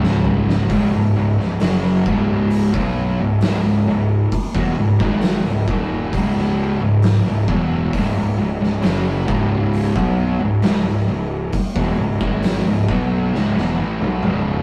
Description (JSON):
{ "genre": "stoner and doom metal", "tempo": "66 BPM", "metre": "4/4", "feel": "straight", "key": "C# minor", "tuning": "A4 = 440 Hz", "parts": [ { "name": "fuzz guitar", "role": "riff", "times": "0.0-14.6 s", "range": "C#2 to B3", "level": "-20 LUFS", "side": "equal", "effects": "distortion" }, { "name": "fuzz picked electric bass", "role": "bass", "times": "0.0-14.6 s", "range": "C#1 to B1", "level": "-26 LUFS", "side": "equal", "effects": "overdrive" }, { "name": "oversized low-tuned drum kit", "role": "drums", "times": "0.0-14.4 s", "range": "hi-hat, kick drum, snare drum, toms", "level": "-25 LUFS", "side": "equal", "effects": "none" } ], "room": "moderate small room reverb, RT60 0.5 s", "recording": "rough rehearsal-room recording, warm saturation", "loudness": "-18 LUFS", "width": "mono", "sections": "0.7-14.6 A section", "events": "drum fill 0.0-0.7, 13.3-14.6", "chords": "0.0 C#5; 0.7 C#m", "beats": "| 0.70 1.61 2.51 3.42 | 4.32 5.22 6.13 7.03 | 7.93 8.83 9.73 10.64 | 11.54 12.44 13.34 14.24" }